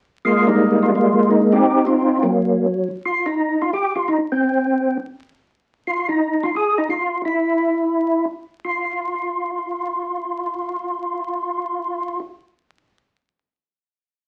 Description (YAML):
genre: jazz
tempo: 172 BPM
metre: 4/4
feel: swing 64% on 8ths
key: F minor, F harmonic minor from 3.0 s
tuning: A4 = 441 Hz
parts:
  - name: percussive tonewheel organ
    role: solo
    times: 0.2-12.2 s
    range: Gb3 to Ab4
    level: -20 LUFS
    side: equal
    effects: slow rotary speaker, overdrive, chorus vibrato
room: wet studio reverb, RT60 0.6 s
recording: very old 78 rpm record, vinyl crackle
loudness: -20 LUFS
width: mono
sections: 0.0-3.0 A section; 3.0-8.6 B section; 8.6-11.4 C section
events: none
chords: 0.2 Fm11; 1.6 Ebm69; 2.3 N.C.